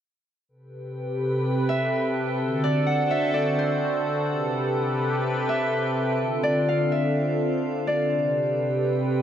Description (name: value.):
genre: hip hop.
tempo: 126 BPM.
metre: 4/4.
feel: half-time.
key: A minor.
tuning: A4 = 440 Hz.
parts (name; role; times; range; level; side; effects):
sweeping resonant pad; sustained chords; 0.5-9.2 s; C3 to B4; -24 LUFS; equal; chorus.
drifting glass-harmonics texture; texture; 1.0-9.2 s; C4 to G5; -33 LUFS; right 1 dB; chorus, built-in reverb.
Celtic harp; melody; 1.7-9.2 s; C5 to F#5; -26 LUFS; right 1 dB; digital delay.
room: moderate lush hall reverb, RT60 2.8 s.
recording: dark, warm production.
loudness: -22 LUFS.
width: side -9 dB against mid.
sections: 0.5-9.2 A section.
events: none.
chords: 0.5 Am9; 2.4 D7; 4.3 Am9; 6.2 Dm7; 8.1 Am9.